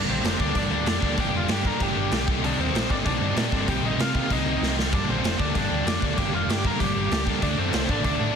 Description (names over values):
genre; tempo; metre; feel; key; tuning
punk rock; 192 BPM; 4/4; straight; G minor; A4 = 440 Hz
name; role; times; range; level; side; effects
distorted electric guitar; riff; 0.0-8.4 s; G2 to G4; -30 LUFS; left 17 dB; overdrive
overdriven electric guitar; riff; 0.0-8.4 s; G2 to Eb4; -31 LUFS; right 17 dB; none
thick fuzz guitar; riff; 0.0-8.4 s; G2 to D4; -32 LUFS; equal; distortion
hollow-body short-scale picked electric bass; bass; 0.0-8.3 s; F1 to C3; -29 LUFS; equal; none
biting lead guitar; melody; 0.1-8.4 s; C4 to Bb5; -30 LUFS; equal; overdrive, digital delay
raw garage drum kit; drums; 0.2-8.1 s; crash cymbal, kick drum, snare drum; -26 LUFS; equal; none
room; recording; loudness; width
little or no reverb; dense, heavily limited modern master; -21 LUFS; side -7 dB against mid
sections
0.0-8.4 A section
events
drum fill 4.6-4.9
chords
0.0 Gm; 2.3 Cm; 4.9 Gm; 7.4 D